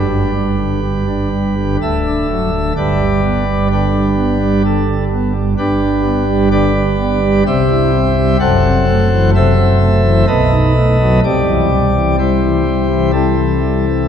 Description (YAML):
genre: classical, chorale-style piece for pipe organ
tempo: 63 BPM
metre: 3/4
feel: rubato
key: G major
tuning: A4 = 441 Hz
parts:
  - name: pipe organ, sparkling flutes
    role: solo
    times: 0.0-14.1 s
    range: D1 to F#5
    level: -12 LUFS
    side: equal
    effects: none
room: wet church reverb, RT60 3.6 s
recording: dark, warm production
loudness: -12 LUFS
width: side -8 dB against mid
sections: 0.0-14.1 A section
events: none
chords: 0.0 G; 1.8 D; 2.8 G; 7.5 C; 8.4 F#m7b5; 10.3 B7; 11.2 C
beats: 0.81 1.81 | 2.75 3.70 4.64 | 5.57 6.51 7.46 | 8.39 9.33 10.27 | 11.23 12.18 13.13